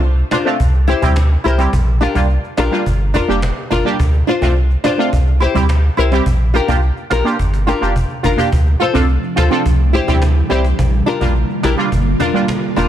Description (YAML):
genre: dancehall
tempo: 106 BPM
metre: 4/4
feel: straight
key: D minor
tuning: A4 = 440 Hz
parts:
  - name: warm sub bass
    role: bass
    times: 0.0-12.9 s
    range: F1 to D2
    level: -14 LUFS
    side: equal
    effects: none
  - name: cajon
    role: drums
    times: 0.0-12.9 s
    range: none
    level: -23 LUFS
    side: equal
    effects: none
  - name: synth brass stab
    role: accompaniment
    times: 0.3-12.9 s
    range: G3 to Bb4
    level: -18 LUFS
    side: right 2 dB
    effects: chorus, phaser
  - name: nylon-string guitar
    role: arpeggios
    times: 0.3-12.9 s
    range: D4 to C5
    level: -21 LUFS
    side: left 6 dB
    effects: none
  - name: ethereal airy pad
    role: sustained chords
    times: 8.8-12.9 s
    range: C3 to F4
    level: -21 LUFS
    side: equal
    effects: ensemble chorus, built-in reverb
room: light reverb, small room ambience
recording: dense, heavily limited modern master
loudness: -12 LUFS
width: side -11 dB against mid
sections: 0.0-8.5 A section; 8.5-12.9 B section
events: drum fill 7.4-8.5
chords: 0.0 Dm7; 0.6 C; 1.7 Bb6; 2.9 Gm7; 4.0 Dm7; 5.1 C; 6.3 Bb6; 7.4 Gm7; 8.5 Dm7; 9.7 C; 10.8 Bb6; 11.9 Gm7